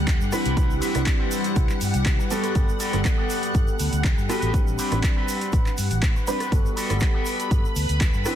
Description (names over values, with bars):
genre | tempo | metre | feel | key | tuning
filtered disco house | 121 BPM | 4/4 | straight | G major | A4 = 440 Hz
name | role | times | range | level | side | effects
warm concert grand piano | accompaniment | 0.0-8.4 s | E3 to F#5 | -29 LUFS | right 1 dB | phaser, vintage 12-bit sampler grit, sidechain pumping
string machine, full ensemble | sustained chords | 0.0-8.4 s | G3 to B5 | -30 LUFS | left 1 dB | phaser, ensemble chorus, sidechain pumping
fingered electric bass | bass | 0.0-8.2 s | G1 to C3 | -26 LUFS | equal | tube saturation, sidechain pumping
electronic kick drum | drums | 0.1-8.1 s | none | -22 LUFS | equal | none
punchy analog drum machine | drums | 0.1-8.4 s | handclaps, hi-hat, rim click | -31 LUFS | right 1 dB | overdrive
tube shaker | percussion | 0.1-8.4 s | none | -37 LUFS | right 6 dB | sidechain pumping on perc
electric guitar with an envelope filter | riff | 0.2-8.4 s | B3 to B4 | -31 LUFS | left 2 dB | sidechain pumping
room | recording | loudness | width
little or no reverb | dense, heavily limited modern master | -20 LUFS | side -10 dB against mid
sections
0.0-8.4 A section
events
none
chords
0.3 Cmaj9; 2.3 Gmaj9; 4.5 Am11; 6.5 Gmaj9